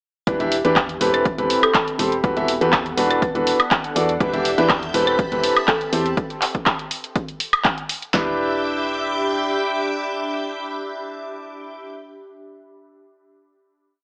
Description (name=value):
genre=piano house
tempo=122 BPM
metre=4/4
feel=straight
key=E minor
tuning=A4 = 440 Hz
part: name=bright concert grand piano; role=riff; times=0.3-11.9 s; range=E3 to E5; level=-24 LUFS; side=equal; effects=sidechain pumping, dub echo
part: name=solid FM bass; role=bass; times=0.3-9.6 s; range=E1 to E2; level=-30 LUFS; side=equal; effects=sidechain pumping
part: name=house drum kit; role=drums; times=0.3-8.1 s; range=handclaps, hi-hat, woodblock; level=-23 LUFS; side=equal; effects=studio reverb
part: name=punchy analog drum machine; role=drums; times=0.3-8.3 s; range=handclaps, kick drum, snare drum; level=-26 LUFS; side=equal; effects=overdrive, studio reverb
part: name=warbly tape-like pad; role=texture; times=0.3-12.1 s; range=B3 to B5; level=-31 LUFS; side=equal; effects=chorus, built-in reverb, sidechain pumping
part: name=folk marimba with hard mallets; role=melody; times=1.1-5.8 s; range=A4 to B4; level=-28 LUFS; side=equal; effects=dub echo
part: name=string machine, violins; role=sustained chords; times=4.2-11.9 s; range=E5 to G6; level=-32 LUFS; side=equal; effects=ensemble chorus, sidechain pumping
room=moderate digital room reverb, RT60 1.1 s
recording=AM radio sound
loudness=-20 LUFS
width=mono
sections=0.3-8.1 groove; 8.1-12.1 final chord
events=none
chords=0.3 Em7; 1.0 Am9/E; 2.2 Gmaj9/E; 3.0 Bm7/E; 4.2 Em7; 4.9 Am9/E; 6.2 N.C.; 8.1 Em7